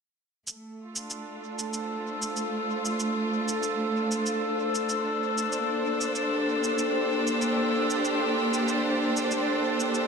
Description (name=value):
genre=ambient dub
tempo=95 BPM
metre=4/4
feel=swing 54% on 16ths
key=D minor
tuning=A4 = 441 Hz
part: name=clear symphonic string section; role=sustained chords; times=0.5-10.1 s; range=A3 to C5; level=-28 LUFS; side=right 1 dB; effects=none
part: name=shaker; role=drums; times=0.5-10.1 s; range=none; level=-35 LUFS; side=right 1 dB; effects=none
part: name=drifting glass-harmonics texture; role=texture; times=1.1-10.1 s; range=A4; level=-29 LUFS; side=left 2 dB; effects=chorus, built-in reverb
room=wet echo chamber reverb, RT60 2.3 s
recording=none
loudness=-25 LUFS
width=side -5 dB against mid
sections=0.5-10.1 A section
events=fade-in on string section 0.5-10.1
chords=0.5 Dm7; 5.5 Csus2